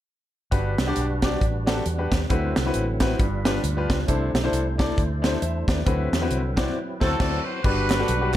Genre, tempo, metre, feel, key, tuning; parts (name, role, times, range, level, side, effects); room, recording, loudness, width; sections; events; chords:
uptempo gospel; 135 BPM; 4/4; swing 58% on 8ths; G major; A4 = 441 Hz
bright grand piano; accompaniment; 0.5-8.4 s; G2 to E5; -27 LUFS; left 2 dB
percussive tonewheel organ; sustained chords; 0.5-8.4 s; F#3 to C5; -32 LUFS; right 2 dB; slow rotary speaker, overdrive, chorus vibrato
vintage muted fingered electric bass; bass; 0.5-8.4 s; G1 to E2; -26 LUFS; equal
crisp fusion drum kit; drums; 0.5-8.2 s; crash cymbal, hi-hat, kick drum, snare drum; -24 LUFS; equal
warm horn section; melody; 7.0-8.4 s; C4 to C5; -26 LUFS; left 1 dB
group handclap; percussion; 7.9-8.4 s; -34 LUFS; right 6 dB
light reverb; dark, warm production; -21 LUFS; side -12 dB against mid
0.5-7.6 A section
band accent 6.8-7.6
0.5 Gmaj7; 2.3 D13; 3.2 G7; 4.1 C69; 5.9 D13; 7.6 Gmaj7